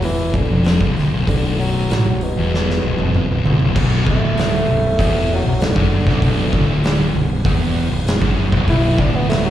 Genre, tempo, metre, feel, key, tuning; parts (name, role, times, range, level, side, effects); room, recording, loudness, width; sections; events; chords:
stoner and doom metal; 97 BPM; 4/4; straight; B minor; A4 = 441 Hz
dark bassoon; melody; 0.0-9.5 s; B2 to E4; -22 LUFS; equal; slapback echo, analog delay
thick fuzz guitar; riff; 0.0-9.5 s; B1 to A2; -21 LUFS; left 5 dB; distortion, slapback echo
thick fuzz guitar; riff; 0.0-9.5 s; B1 to A2; -23 LUFS; right 7 dB; distortion
fuzz fingered electric bass; bass; 0.0-9.5 s; B0 to A1; -21 LUFS; equal; overdrive
oversized low-tuned drum kit; drums; 0.0-9.4 s; crash cymbal, hi-hat, kick drum, snare drum, toms; -20 LUFS; equal
distorted electric guitar; riff; 3.8-9.5 s; B1 to F#2; -26 LUFS; right 1 dB; overdrive, slapback echo
light reverb; live gig heard through the venue's PA, recital hall reverb; -14 LUFS; side -12 dB against mid
0.0-3.8 A section; 3.8-9.5 B section
drum fill 2.5-3.8; bassoon solo 3.8-9.5
0.0 Bm